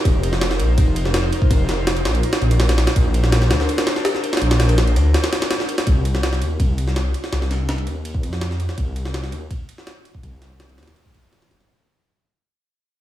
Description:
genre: drum and bass, jungle.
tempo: 165 BPM.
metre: 4/4.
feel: straight.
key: C dorian.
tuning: A4 = 442 Hz.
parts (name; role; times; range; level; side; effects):
airy breathy pad; sustained chords; 0.0-5.8 s; D4 to C5; -26 LUFS; left 1 dB; chorus.
detuned saw bass; bass; 0.1-11.7 s; F1 to F2; -19 LUFS; equal; tube saturation.
jungle sampler-style drum kit; drums; 0.1-11.7 s; kick drum, ride cymbal, snare drum; -20 LUFS; equal; none.
room: little or no reverb.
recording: small room ambience.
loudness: -17 LUFS.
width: side -13 dB against mid.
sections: 0.0-5.9 A section; 5.9-11.7 B section.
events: drop 0.0-5.9; break 5.1-5.9; fade-out 5.9-11.7.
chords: 0.1 F7sus4; 3.0 Bbmaj9; 5.9 Cm.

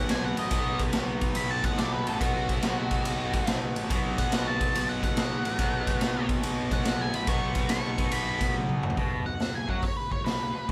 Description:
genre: blues rock power trio and southern rock.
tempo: 142 BPM.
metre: 4/4.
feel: swing 67% on 8ths.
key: unclear.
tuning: A4 = 439 Hz.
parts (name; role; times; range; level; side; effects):
octave-fuzz lead guitar; melody; 0.0-10.7 s; F#4 to C#6; -35 LUFS; equal; distortion.
raw garage guitar; riff; 0.0-10.6 s; B2 to B3; -34 LUFS; equal; overdrive.
fuzz picked electric bass; bass; 0.0-10.7 s; A1 to F#2; -36 LUFS; equal; overdrive.
raw garage drum kit; drums; 0.1-10.7 s; hi-hat, kick drum, ride cymbal, snare drum, toms; -31 LUFS; equal; none.
room: moderate studio reverb, RT60 0.8 s.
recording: band playing live in one room.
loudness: -28 LUFS.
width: mono.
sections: 0.0-9.0 A section; 9.0-10.7 B section.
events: lead electric guitar solo 0.0-9.0; drum fill 8.6-9.0.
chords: 0.0 B5.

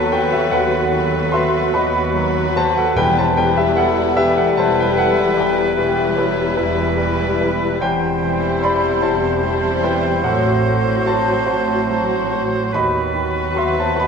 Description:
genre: classical.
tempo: 49 BPM (dotted quarters).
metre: 12/8.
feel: rubato.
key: E minor.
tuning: A4 = 444 Hz.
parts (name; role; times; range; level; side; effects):
clear baby grand piano; melody; 0.0-14.1 s; D#2 to C6; -20 LUFS; left 2 dB; none.
rich studio violin section; melody; 0.0-14.1 s; B4 to C5; -30 LUFS; left 2 dB; none.
bright oboe; second line; 0.0-14.1 s; B4 to C5; -25 LUFS; right 1 dB; none.
dark chamber violin section; second line; 0.0-14.1 s; E4 to F#4; -28 LUFS; left 4 dB; none.
mellow large flute ensemble; second line; 0.0-14.1 s; E5 to C6; -27 LUFS; right 2 dB; none.
warm clarinet; second line; 0.0-14.1 s; E4 to A4; -29 LUFS; left 2 dB; none.
mellow bassoon; accompaniment; 0.0-14.1 s; E3 to G3; -27 LUFS; right 2 dB; none.
warm symphonic viola section; accompaniment; 0.0-14.1 s; F#3 to G3; -27 LUFS; right 1 dB; none.
mellow French horn section; sustained chords; 0.0-14.1 s; B3 to G4; -23 LUFS; left 5 dB; none.
rich chamber cello section; bass; 0.0-14.1 s; D#2 to A2; -25 LUFS; right 4 dB; none.
warm studio double bass section; bass; 0.0-14.1 s; E1 to D#2; -28 LUFS; right 5 dB; none.
timpani; percussion; 3.0-4.1 s; E2; -29 LUFS; equal; none.
room: wet scoring stage reverb, RT60 1.7 s.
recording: minimal, uncompressed stereo recording.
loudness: -15 LUFS.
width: side -6 dB against mid.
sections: 0.0-14.1 A section.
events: none.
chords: 0.0 B/D#; 3.0 Em; 7.8 C/E; 10.2 F#dim/A; 12.7 B/D#.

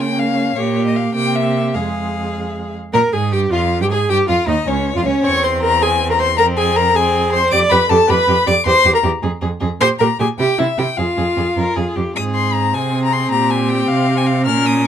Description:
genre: quick classical-period movement for string quartet.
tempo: 104 BPM (dotted quarters).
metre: 6/8.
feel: straight.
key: F minor.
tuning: A4 = 440 Hz.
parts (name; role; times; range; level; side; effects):
rich violin; melody; 0.0-14.9 s; Db5 to F6; -18 LUFS; left 6 dB; none.
rich violin; second line; 0.0-14.9 s; C4 to Bb4; -23 LUFS; left 3 dB; none.
rich viola; accompaniment; 0.0-14.9 s; Ab3 to D5; -18 LUFS; right 2 dB; none.
clear cello; bass; 0.0-14.9 s; Db2 to Db3; -20 LUFS; right 4 dB; none.
room: little or no reverb.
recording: close, detailed microphones.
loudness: -14 LUFS.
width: side -9 dB against mid.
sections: 0.0-2.9 A section; 2.9-12.2 B section; 12.2-14.9 C section.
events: none.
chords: 0.0 Bbm/Db; 0.6 Gdim/Bb; 1.2 C7; 1.7 Fm; 4.1 Eb9; 5.2 C/E; 6.4 Fm; 7.5 G7/F; 8.7 C; 9.2 Fm; 9.8 Abmaj7sus2/Bb; 10.4 C; 11.0 Fm; 12.2 Ab; 13.3 Abmaj9/Bb; 13.9 Csus4.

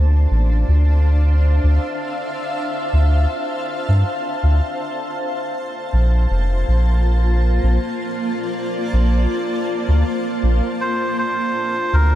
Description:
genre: ambient dub.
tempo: 80 BPM.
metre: 4/4.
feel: swing 54% on 16ths.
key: D minor.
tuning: A4 = 440 Hz.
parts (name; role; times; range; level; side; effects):
granular cloud pad; sustained chords; 0.0-12.2 s; Bb3 to A5; -23 LUFS; left 1 dB; built-in reverb.
soft dub sub bass; bass; 0.0-12.2 s; F1 to G2; -14 LUFS; equal; tube saturation.
melodica; melody; 10.8-12.2 s; Bb4 to C5; -20 LUFS; right 2 dB; dub echo.
room: little or no reverb.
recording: echo-heavy mix.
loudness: -16 LUFS.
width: side -13 dB against mid.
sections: 0.0-12.2 A section.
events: none.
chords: 0.0 Dm7; 4.8 Bbmaj7; 10.8 Dm7.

